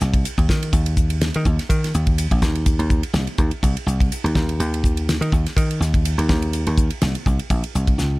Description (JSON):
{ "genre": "electric jazz fusion", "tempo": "124 BPM", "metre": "4/4", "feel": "swing 54% on 16ths", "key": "unclear", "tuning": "A4 = 440 Hz", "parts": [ { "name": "dry thumbed slap bass", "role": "bass", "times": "0.0-8.2 s", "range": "Bb1 to Eb3", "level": "-20 LUFS", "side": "equal", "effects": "none" }, { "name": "damped 70s drum kit", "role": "drums", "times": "0.0-8.1 s", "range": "hi-hat, kick drum, ride cymbal, snare drum", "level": "-20 LUFS", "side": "equal", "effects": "none" } ], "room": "little or no reverb", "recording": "none", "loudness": "-17 LUFS", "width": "side -22 dB against mid", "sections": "0.0-8.2 A section", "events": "drum fill 8.0", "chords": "none", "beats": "0.24 | 0.72 1.21 1.69 2.17 | 2.66 3.14 3.63 4.11 | 4.59 5.08 5.56 6.04 | 6.53 7.01 7.50 7.98" }